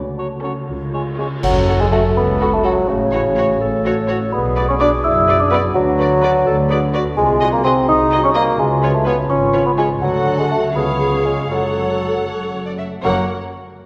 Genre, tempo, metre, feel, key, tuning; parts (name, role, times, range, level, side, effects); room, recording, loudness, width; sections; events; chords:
cinematic, playful, whimsical film cue; 77-85 BPM (dotted quarters); 6/8; straight; F# minor; A4 = 439 Hz
small celesta; melody; 0.0-13.3 s; C#5 to E6; -28 LUFS; equal
dark French horn section; sustained chords; 0.0-13.3 s; G#3 to D5; -28 LUFS; equal
concert harp; arpeggios; 0.0-13.3 s; F#2 to F#5; -29 LUFS; equal
muted chamber cello section; bass; 0.0-13.3 s; C#2 to D3; -27 LUFS; equal
muted chamber double bass section; bass; 0.0-13.3 s; F#1 to D2; -27 LUFS; equal
mellow cor anglais; second line; 0.2-1.3 s; C#5; -35 LUFS; equal
mellow hollow large flute ensemble; second line; 0.2-13.3 s; C#5 to E6; -26 LUFS; equal
warm clarinet; second line; 0.2-13.3 s; A#3 to A4; -28 LUFS; equal
dark bassoon; accompaniment; 0.2-13.3 s; C#3 to E4; -21 LUFS; equal
muted chamber violin section; melody; 0.4-13.3 s; G#4 to F#5; -30 LUFS; equal
muted chamber violin section; second line; 0.4-13.3 s; E#4 to E5; -33 LUFS; equal
muted symphonic viola section; accompaniment; 0.4-13.3 s; C#4 to A#4; -30 LUFS; equal
clash cymbals and concert bass drum; percussion; 1.4-2.4 s; -29 LUFS; equal
wet concert hall reverb, RT60 2.0 s; faint mains hum; -17 LUFS; mono
0.0-1.4 A section; 1.4-13.0 B section
band accent 1.4-1.9
0.0 F#m/C#; 0.7 C#; 1.4 F#m; 2.9 F#m/A; 4.3 Bm; 5.8 Bm/D; 7.2 G#7/B#; 8.6 C#7; 10.0 D; 10.8 C#7; 11.5 F#m; 13.0 F#